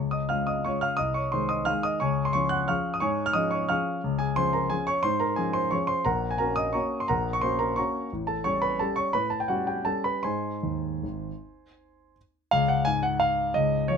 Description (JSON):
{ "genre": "classical, piano waltz", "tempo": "147-186 BPM", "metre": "3/4", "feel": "rubato", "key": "Db major from 4.0 s", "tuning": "A4 = 440 Hz", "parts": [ { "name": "warm concert grand piano", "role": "solo", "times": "0.0-14.0 s", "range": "Ab1 to Gb6", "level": "-24 LUFS", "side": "equal", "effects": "none" } ], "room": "little or no reverb", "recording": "close, detailed microphones", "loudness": "-24 LUFS", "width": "side -6 dB against mid", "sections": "0.0-12.5 A section; 12.5-14.0 B section", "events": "none", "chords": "0.0 Db; 1.0 Ab/C; 2.0 Db; 6.1 Gb/Bb; 8.1 A7; 10.2 Ab; 12.5 Db", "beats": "0.31 0.66 | 1.00 1.33 1.68 | 2.02 2.35 2.69 | 3.03 3.36 3.70 | 4.04 4.37 4.71 | 5.04 5.38 5.73 | 6.07 6.40 6.75 | 7.09 7.43 7.78 | 8.12 8.45 8.80 | 9.15 9.49 9.86 | 10.24 10.63 11.03 | 11.42 11.78 12.16 | 12.52 12.86 13.21 | 13.56 13.90" }